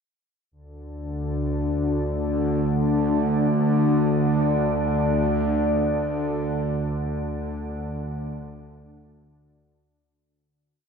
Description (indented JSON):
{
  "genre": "ambient",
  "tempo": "free time",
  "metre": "none",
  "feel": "none",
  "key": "unclear",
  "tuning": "A4 = 440 Hz",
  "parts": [
    { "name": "organ-like drone", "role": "solo", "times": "0.9-10.4 s", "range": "D2 to D3", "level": "-22 LUFS", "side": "equal", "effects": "ensemble chorus, built-in reverb, tape echo" }
  ],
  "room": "wet cathedral reverb, RT60 5.0 s",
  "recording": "dark, warm production",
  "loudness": "-21 LUFS",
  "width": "side -6 dB against mid",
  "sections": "0.5-10.3 A section",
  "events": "fade-out 5.4-10.3",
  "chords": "none",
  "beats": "free time"
}